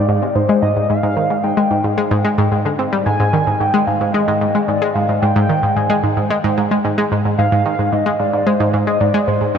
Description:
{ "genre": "ambient", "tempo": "111 BPM", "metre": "4/4", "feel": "straight", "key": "Ab lydian", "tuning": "A4 = 440 Hz", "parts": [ { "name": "pulse-width lead", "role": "melody", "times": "0.0-9.6 s", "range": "B4 to Ab5", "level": "-19 LUFS", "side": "equal", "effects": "chorus, ping-pong delay" }, { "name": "analog pluck", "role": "riff", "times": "0.0-9.6 s", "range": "G2 to C4", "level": "-15 LUFS", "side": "equal", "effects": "chorus, ping-pong delay" } ], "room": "wet huge ambient reverb, RT60 8.2 s", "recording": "dreamy mix soaked in reverb", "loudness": "-14 LUFS", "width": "side -7 dB against mid", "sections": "0.0-9.6 A section", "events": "none", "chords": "none", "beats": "0.36 | 0.90 1.44 1.98 2.52 | 3.06 3.60 4.14 4.68 | 5.22 5.76 6.30 6.84 | 7.38 7.92 8.46 9.01 | 9.55" }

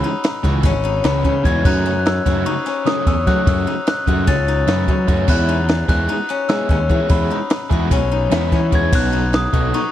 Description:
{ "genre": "math rock and midwest emo", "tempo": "297 BPM (eighths)", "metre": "9/8", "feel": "straight", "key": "E major", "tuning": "A4 = 440 Hz", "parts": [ { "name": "glockenspiel with rubber mallets", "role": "melody", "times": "0.0-9.9 s", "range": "B5 to A6", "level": "-24 LUFS", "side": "equal", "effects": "tape echo" }, { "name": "steel-string zither", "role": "arpeggios", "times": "0.0-9.9 s", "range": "B3 to F#4", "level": "-22 LUFS", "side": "left 7 dB", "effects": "none" }, { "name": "overdriven semi-hollow guitar", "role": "riff", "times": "0.0-9.8 s", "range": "C#3 to A4", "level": "-23 LUFS", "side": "right 2 dB", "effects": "none" }, { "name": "compact cocktail drum kit", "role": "drums", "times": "0.0-9.8 s", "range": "crash cymbal, kick drum, ride cymbal, snare drum", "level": "-19 LUFS", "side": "equal", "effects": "none" }, { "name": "fuzz picked electric bass", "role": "bass", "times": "0.4-9.7 s", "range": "G#1 to F#3", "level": "-19 LUFS", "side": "equal", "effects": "overdrive" } ], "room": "little or no reverb", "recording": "dry, close 1970s-style studio recording", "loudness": "-15 LUFS", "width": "side -12 dB against mid", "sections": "0.0-9.9 A section", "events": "none", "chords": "0.0 C#m11; 1.7 F#m7; 5.3 Emaj9; 8.9 B7", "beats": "0.04 0.24 0.44 0.64 0.84 1.05 1.25 1.45 | 1.65 1.85 2.06 2.26 2.46 2.66 2.86 3.07 3.27 | 3.47 3.67 3.87 4.08 4.28 4.48 4.68 4.88 5.08 | 5.29 5.49 5.69 5.89 6.09 6.30 6.50 6.70 6.90 | 7.10 7.31 7.51 7.71 7.91 8.12 8.32 8.52 8.72 | 8.93 9.13 9.33 9.54 9.74" }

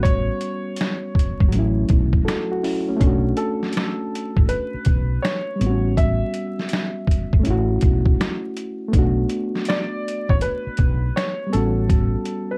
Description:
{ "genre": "lo-fi hip hop", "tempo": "81 BPM", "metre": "4/4", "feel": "swing 65% on 16ths", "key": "B minor", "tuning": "A4 = 440 Hz", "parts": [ { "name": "felt-muted upright piano", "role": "melody", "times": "0.0-12.6 s", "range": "A4 to E5", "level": "-30 LUFS", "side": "equal", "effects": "low-pass filter" }, { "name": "reed electric piano", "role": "accompaniment", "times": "0.0-12.6 s", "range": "F#3 to A4", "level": "-27 LUFS", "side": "equal", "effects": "low-pass filter" }, { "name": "woody fretless electric bass", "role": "bass", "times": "0.0-12.1 s", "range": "G1 to B1", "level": "-24 LUFS", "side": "equal", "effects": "none" }, { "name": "trip hop sampler-style drum kit", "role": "drums", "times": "0.0-12.5 s", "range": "finger snaps, hi-hat, kick drum, snare drum", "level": "-22 LUFS", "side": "equal", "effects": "none" } ], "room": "light reverb", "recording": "vinyl crackle", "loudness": "-21 LUFS", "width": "mono", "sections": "0.0-12.6 A section", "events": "none", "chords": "0.0 A13; 1.5 F#m7/A; 3.0 Bm9; 5.6 A13; 7.5 F#m7/A; 8.9 Bm7; 11.5 A13", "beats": "| 0.04 0.78 1.52 2.27 | 3.01 3.75 4.49 5.23 | 5.97 6.71 7.45 8.19 | 8.93 9.67 10.41 11.15 | 11.90" }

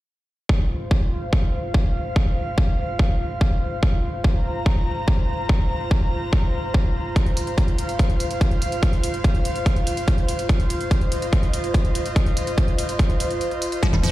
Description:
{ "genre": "psychedelic trance", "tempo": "144 BPM", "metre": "4/4", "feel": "straight", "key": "unclear", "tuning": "A4 = 435 Hz", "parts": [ { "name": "electronic kick drum", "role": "drums", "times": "0.5-13.9 s", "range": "none", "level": "-19 LUFS", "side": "equal", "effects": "overdrive, studio reverb" }, { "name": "airy breathy pad", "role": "texture", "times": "0.5-14.1 s", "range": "F4 to Bb5", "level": "-27 LUFS", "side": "equal", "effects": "chorus, sidechain pumping" }, { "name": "electronic hi-hat", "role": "drums", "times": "7.2-14.1 s", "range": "none", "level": "-33 LUFS", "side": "right 1 dB", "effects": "overdrive, studio reverb" }, { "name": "swarming drone", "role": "sustained chords", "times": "13.8-14.1 s", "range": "none", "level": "barely audible", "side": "none", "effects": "none" }, { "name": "liquid acid bass", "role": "riff", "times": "13.8-14.1 s", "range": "F3 to G3", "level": "-24 LUFS", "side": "left 2 dB", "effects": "phaser, auto-pan, sidechain pumping" }, { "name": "tight sequencer bass", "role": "bass", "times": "13.9-14.1 s", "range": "F1", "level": "-18 LUFS", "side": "equal", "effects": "none" } ], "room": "digital ambience", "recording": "played on a big sound system in a bare room, large studio reverb", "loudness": "-19 LUFS", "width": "side -16 dB against mid", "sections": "0.5-14.1 A section", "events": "break 13.4-13.8", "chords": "0.5 F5", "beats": "| 0.49 0.91 1.33 1.74 | 2.16 2.58 2.99 3.41 | 3.83 4.24 4.66 5.08 | 5.49 5.91 6.33 6.74 | 7.16 7.58 7.99 8.41 | 8.83 9.24 9.66 10.08 | 10.49 10.91 11.33 11.74 | 12.16 12.58 12.99 13.41 | 13.83" }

